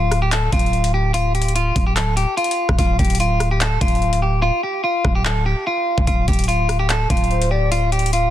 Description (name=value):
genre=hip hop, trap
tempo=146 BPM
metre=4/4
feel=half-time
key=D minor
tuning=A4 = 436 Hz
part: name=clean electric guitar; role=melody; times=0.0-8.3 s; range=F4 to A4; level=-20 LUFS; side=equal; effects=wide subtle chorus, tape echo
part: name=growling 808-style bass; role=bass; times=0.0-8.3 s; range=D1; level=-19 LUFS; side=equal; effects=none
part: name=trap drum kit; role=drums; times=0.1-8.2 s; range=handclaps, hi-hat, kick drum, rim click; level=-21 LUFS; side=equal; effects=vintage 12-bit sampler grit
part: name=warm velvety synth lead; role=second line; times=7.3-7.7 s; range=C5 to D5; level=-26 LUFS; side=left 4 dB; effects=chorus, tape echo
room=little or no reverb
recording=dense, heavily limited modern master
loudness=-16 LUFS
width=side -12 dB against mid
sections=0.0-8.3 A section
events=hi-hats muted 4.4-6.1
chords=0.0 Dm